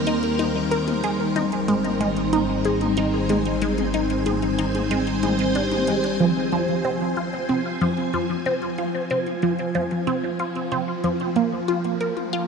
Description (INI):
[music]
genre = ambient, sequencer-driven space music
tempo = 93 BPM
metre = 4/4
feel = straight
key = F minor from 6.2 s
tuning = A4 = 440 Hz
[part]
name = phased string machine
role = sustained chords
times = 0.0-12.5 s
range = Eb3 to Ab5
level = -26 LUFS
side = equal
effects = ensemble chorus, phaser
[part]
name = vibraphone with soft mallets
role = arpeggios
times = 0.0-6.2 s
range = G3 to C5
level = -26 LUFS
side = left 3 dB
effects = auto-pan, tape echo
[part]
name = analog drone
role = bass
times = 0.0-6.2 s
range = Ab1 to Eb2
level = -31 LUFS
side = equal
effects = chorus
[part]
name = wind-like tuned noise texture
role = texture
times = 0.0-12.5 s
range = C5 to F5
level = -36 LUFS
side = right 2 dB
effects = built-in reverb
[part]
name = resonant blip pluck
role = riff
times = 0.1-12.5 s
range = F3 to Bb4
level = -24 LUFS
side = right 1 dB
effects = phaser, cassette tape, tape echo
[part]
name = minimal click drum kit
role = percussion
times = 0.1-12.5 s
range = hi-hat, toms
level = -34 LUFS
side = left 6 dB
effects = tape echo
[sound]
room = wet huge ambient reverb, RT60 7.3 s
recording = none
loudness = -20 LUFS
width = side -5 dB against mid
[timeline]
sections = 0.0-6.2 A section; 6.2-12.5 B section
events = none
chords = 0.0 Eb; 1.0 Ab; 6.2 Fm; 11.4 Bbm